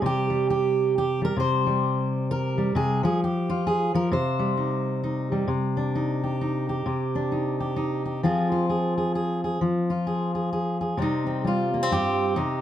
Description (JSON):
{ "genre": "folk, solo fingerstyle acoustic guitar", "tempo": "131 BPM", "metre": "3/4", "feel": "swing 62% on 8ths", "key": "C minor", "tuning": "A4 = 440 Hz", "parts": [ { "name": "fingerpicked steel-string acoustic guitar", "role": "solo", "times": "0.0-12.6 s", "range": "G2 to C5", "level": "-23 LUFS", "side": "equal", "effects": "none" } ], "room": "moderate studio reverb, RT60 0.6 s", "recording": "none", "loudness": "-23 LUFS", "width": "side -11 dB against mid", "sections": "0.0-5.5 A section; 5.5-11.0 B section; 11.0-12.6 C section", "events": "none", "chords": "0.0 Gm/C; 2.8 Fsus2/C; 4.1 Cm; 5.5 Cmadd9; 8.2 Fm; 11.0 Cm", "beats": "| 0.02 0.47 0.93 | 1.39 1.84 2.30 | 2.75 3.21 3.67 | 4.12 4.58 5.04 | 5.49 5.95 6.41 | 6.86 7.32 7.78 | 8.24 8.69 9.15 | 9.61 10.07 10.53 | 10.98 11.44 11.90 | 12.36" }